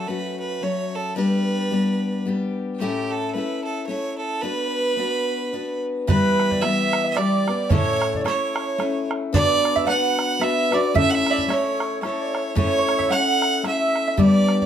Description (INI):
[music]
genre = celtic folk, Celtic waltz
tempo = 111 BPM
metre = 3/4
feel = swing 57% on 8ths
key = unclear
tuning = A4 = 440 Hz
[part]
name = clear fiddle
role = melody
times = 0.0-14.6 s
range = G4 to F#5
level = -24 LUFS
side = right 4 dB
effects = plate reverb
[part]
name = picked steel-string acoustic guitar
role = accompaniment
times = 0.0-14.7 s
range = A2 to B4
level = -23 LUFS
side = left 3 dB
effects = none
[part]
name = baroque flute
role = second line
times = 6.1-14.7 s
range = B4 to F#5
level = -28 LUFS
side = equal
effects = none
[part]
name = mandolin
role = second line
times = 6.1-14.7 s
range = B4 to F#5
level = -27 LUFS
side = right 9 dB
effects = none
[part]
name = bodhran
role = percussion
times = 6.1-14.7 s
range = none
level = -25 LUFS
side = right 3 dB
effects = none
[sound]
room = wet studio reverb, RT60 0.5 s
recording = none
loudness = -19 LUFS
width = side -9 dB against mid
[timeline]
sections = 0.0-6.1 A section; 6.1-14.7 B section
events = none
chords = 0.0 F#m; 1.2 G; 2.8 A; 4.4 Bm; 6.1 Em; 7.7 A; 9.3 Bm; 11.0 A